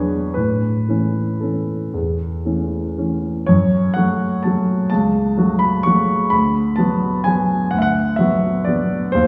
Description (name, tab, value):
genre	classical, piano waltz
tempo	111-135 BPM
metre	3/4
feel	rubato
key	unclear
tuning	A4 = 439 Hz
part	warm concert grand piano	solo	0.0-9.3 s	C#2 to C#6	-18 LUFS	equal	none
room	wet recital hall reverb, RT60 1.4 s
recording	heard from further back in the room, small room reverb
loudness	-18 LUFS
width	mono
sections	0.0-3.5 A section; 3.5-9.3 B section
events	none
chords	0.4 A; 3.5 F#m; 6.3 Bm/D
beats	| 0.36 0.89 1.42 | 1.94 2.45 2.98 | 3.49 3.97 4.45 | 4.91 5.38 5.86 | 6.32 6.78 7.26 | 7.73 8.19 8.67 | 9.14